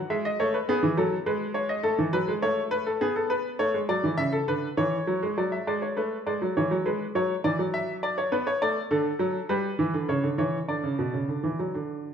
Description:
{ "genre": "classical, baroque-style two-part invention for grand piano", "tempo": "102 BPM", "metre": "3/4", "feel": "straight", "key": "A major", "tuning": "A4 = 442 Hz", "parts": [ { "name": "bright baby grand piano", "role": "solo", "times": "0.0-12.1 s", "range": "B2 to E5", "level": "-24 LUFS", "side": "equal", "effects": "none" } ], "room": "moderate recital hall reverb, RT60 1.5 s", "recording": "minimal, uncompressed stereo recording", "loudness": "-24 LUFS", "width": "side -7 dB against mid", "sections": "0.0-5.4 A section; 5.4-12.1 B section", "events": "none", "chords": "0.1 E/G#; 1.3 G#madd11; 1.8 A; 3.0 G#m/B; 3.6 A; 4.8 E69; 5.4 G#m7b5/F#; 6.6 C#m/E; 7.2 F#5; 8.3 Bm; 8.9 D; 9.5 Em/G; 10.1 C#m; 10.7 N.C." }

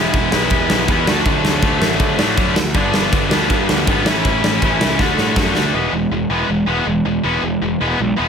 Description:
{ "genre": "punk rock", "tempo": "161 BPM", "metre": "4/4", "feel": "straight", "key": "unclear", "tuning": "A4 = 435 Hz", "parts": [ { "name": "sludgy distorted guitar", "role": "riff", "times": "0.0-8.3 s", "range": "G2 to F#4", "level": "-17 LUFS", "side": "left 1 dB", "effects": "overdrive" }, { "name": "fuzz picked electric bass", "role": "bass", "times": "0.0-8.3 s", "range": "E1 to D3", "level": "-22 LUFS", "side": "equal", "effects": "overdrive" }, { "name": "big rock drum kit", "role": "drums", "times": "0.1-5.6 s", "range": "crash cymbal, kick drum, snare drum", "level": "-18 LUFS", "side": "equal", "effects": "none" } ], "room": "light reverb", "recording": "none", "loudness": "-14 LUFS", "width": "side -7 dB against mid", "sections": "0.0-5.7 A section; 5.7-8.3 B section", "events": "drum fill 5.0-5.7; half time 5.7-8.3", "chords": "0.0 E; 1.1 D; 2.8 G; 4.1 A; 5.0 D; 5.7 E" }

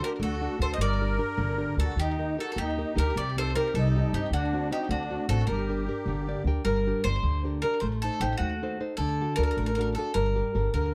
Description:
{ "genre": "italian folk, Italian serenade", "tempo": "103 BPM (dotted quarters)", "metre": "6/8", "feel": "straight", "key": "G harmonic minor", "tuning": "A4 = 439 Hz", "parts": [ { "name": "bowl-back mandolin", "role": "melody", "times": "0.0-10.9 s", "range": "F#4 to Eb5", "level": "-33 LUFS", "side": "equal", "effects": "slapback echo" }, { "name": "musette accordion", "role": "second line", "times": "0.0-6.4 s", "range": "D4 to C5", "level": "-36 LUFS", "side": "equal", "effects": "none" }, { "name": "nylon-string guitar", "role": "accompaniment", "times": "0.0-10.9 s", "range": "C3 to G5", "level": "-34 LUFS", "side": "equal", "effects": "none" }, { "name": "upright bass", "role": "bass", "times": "0.2-10.9 s", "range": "G1 to G2", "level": "-31 LUFS", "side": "equal", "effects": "none" } ], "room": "moderate studio ambience, RT60 0.5 s", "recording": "dark, warm production", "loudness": "-28 LUFS", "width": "mono", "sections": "0.0-6.7 A section; 6.7-10.9 B section", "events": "nylon-string guitar fill 6.1-6.7", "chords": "0.0 D; 0.8 Gm; 2.0 Eb; 3.2 Cm; 4.3 D7; 5.5 Gm; 7.8 Adim; 9.0 D; 10.1 Gmadd9" }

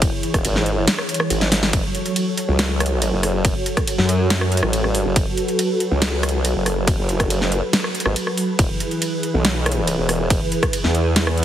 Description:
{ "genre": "heavy wobble dubstep", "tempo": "140 BPM", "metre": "4/4", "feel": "half-time", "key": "F# minor", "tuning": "A4 = 440 Hz", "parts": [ { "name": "supersaw pad", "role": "sustained chords", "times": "0.0-11.4 s", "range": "E3 to C#5", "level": "-23 LUFS", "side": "right 1 dB", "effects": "phaser, sidechain pumping, low-pass filter" }, { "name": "formant-sweep wobble bass", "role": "bass", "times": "0.0-11.4 s", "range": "E1 to F#2", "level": "-20 LUFS", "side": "equal", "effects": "chorus, overdrive" }, { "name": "dubstep drum kit", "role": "drums", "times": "0.0-11.4 s", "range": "hi-hat, ride cymbal, rim click, snare drum", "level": "-22 LUFS", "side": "equal", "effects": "none" }, { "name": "electronic kick drum", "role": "drums", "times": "0.0-10.7 s", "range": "none", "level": "-21 LUFS", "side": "equal", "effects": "none" } ], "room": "light reverb, digital ambience", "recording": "heavily compressed radio sound, multiband compression", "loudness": "-17 LUFS", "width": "side -11 dB against mid", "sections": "0.0-11.4 A section", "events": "drum fill 1.4-1.7", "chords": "0.0 E; 1.7 F#m; 8.6 E" }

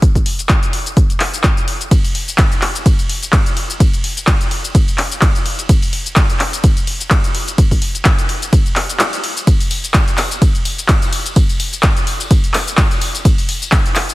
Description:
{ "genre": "house", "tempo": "127 BPM", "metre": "4/4", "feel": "swing 56% on 16ths", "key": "none", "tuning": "none", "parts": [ { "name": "electronic kick drum", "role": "drums", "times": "0.0-13.8 s", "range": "none", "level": "-13 LUFS", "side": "equal", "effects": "none" }, { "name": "punchy analog drum machine", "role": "drums", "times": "0.0-14.1 s", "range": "handclaps, hi-hat, ride cymbal, shaker", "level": "-18 LUFS", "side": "left 1 dB", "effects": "none" }, { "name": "tambourine", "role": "percussion", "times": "9.5-14.1 s", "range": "none", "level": "-28 LUFS", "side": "left 5 dB", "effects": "none" } ], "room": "light reverb", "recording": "heavily compressed radio sound, multiband compression", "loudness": "-12 LUFS", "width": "side -19 dB against mid", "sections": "0.0-14.1 A section", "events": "break 9.0-9.5", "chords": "none" }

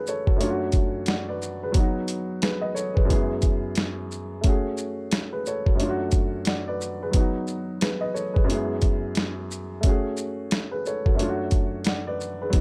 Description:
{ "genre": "hip hop, boom-bap hip-hop", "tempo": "89 BPM", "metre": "4/4", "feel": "swing 60% on 16ths", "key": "unclear", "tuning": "A4 = 440 Hz", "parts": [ { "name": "dark baby grand piano", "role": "accompaniment", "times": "0.0-12.6 s", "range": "F#2 to F#5", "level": "-29 LUFS", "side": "equal", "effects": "high-pass filter, low-pass filter" }, { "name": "dusty soul sampler-style drum kit", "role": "drums", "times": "0.1-12.6 s", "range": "hi-hat, kick drum, shaker, snare drum", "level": "-25 LUFS", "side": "equal", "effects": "overdrive" } ], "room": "little or no reverb", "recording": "none", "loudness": "-25 LUFS", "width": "mono", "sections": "0.0-12.6 A section", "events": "none", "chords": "0.4 Bm9/F#; 1.7 B/F#; 3.1 E/F#; 4.4 F#madd9; 5.8 Bm9/F#; 7.1 B/F#; 8.5 E/F#; 9.8 F#madd9; 11.2 Bm9/F#" }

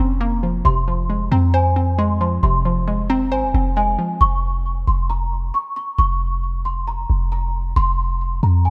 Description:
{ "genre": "hip hop, trap", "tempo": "135 BPM", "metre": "4/4", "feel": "half-time", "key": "unclear", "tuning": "A4 = 440 Hz", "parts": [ { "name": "small celesta", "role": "melody", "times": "0.0-8.7 s", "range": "Ab5 to Db6", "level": "-25 LUFS", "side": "equal", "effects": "ensemble chorus" }, { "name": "hollow square pluck", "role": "accompaniment", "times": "0.0-4.2 s", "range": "C3 to C5", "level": "-24 LUFS", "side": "equal", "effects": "chorus" }, { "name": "clean 808-style bass", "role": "bass", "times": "0.0-8.7 s", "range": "F1 to F2", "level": "-22 LUFS", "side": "equal", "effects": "none" } ], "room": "light reverb, studio ambience", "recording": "none", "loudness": "-20 LUFS", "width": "mono", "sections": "0.0-4.2 A section; 4.2-8.7 A section", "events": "none", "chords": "0.0 Bbmadd9/F; 0.7 Fm; 4.2 Bbm/F" }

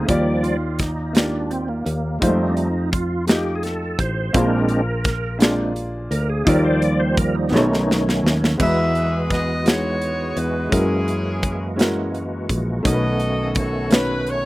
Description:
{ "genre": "slow gospel", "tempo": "56 BPM (dotted quarters)", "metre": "6/8", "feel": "straight", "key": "Eb major, E major from 8.6 s", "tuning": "A4 = 440 Hz", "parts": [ { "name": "warm upright piano", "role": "accompaniment", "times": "0.0-14.5 s", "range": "Bb2 to Ab5", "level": "-24 LUFS", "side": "left 1 dB", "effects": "none" }, { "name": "bright tonewheel organ", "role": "sustained chords", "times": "0.0-14.5 s", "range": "D#3 to D5", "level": "-24 LUFS", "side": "right 1 dB", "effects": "fast rotary speaker, chorus vibrato" }, { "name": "fingered electric bass", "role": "bass", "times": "0.0-14.5 s", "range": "A1 to F#2", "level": "-23 LUFS", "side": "equal", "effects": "none" }, { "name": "modern studio drum kit", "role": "drums", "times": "0.1-14.4 s", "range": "crash cymbal, hi-hat, kick drum, snare drum", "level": "-20 LUFS", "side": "equal", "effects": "none" }, { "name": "bright saxophone section", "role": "melody", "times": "8.6-14.5 s", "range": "C#4 to E5", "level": "-24 LUFS", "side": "equal", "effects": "none" } ], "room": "little or no reverb", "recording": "recorded outdoors, with no room sound", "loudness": "-18 LUFS", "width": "side -18 dB against mid", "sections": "0.1-8.6 A section; 8.6-14.5 B section", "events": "tonewheel organ solo 0.1-8.6; drum fill 7.5-8.6", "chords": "0.1 Ebmaj9; 2.2 F9; 4.3 Bb9; 6.5 Ebmaj9; 7.5 B13; 8.6 Emaj9; 10.7 F#9; 12.9 B9" }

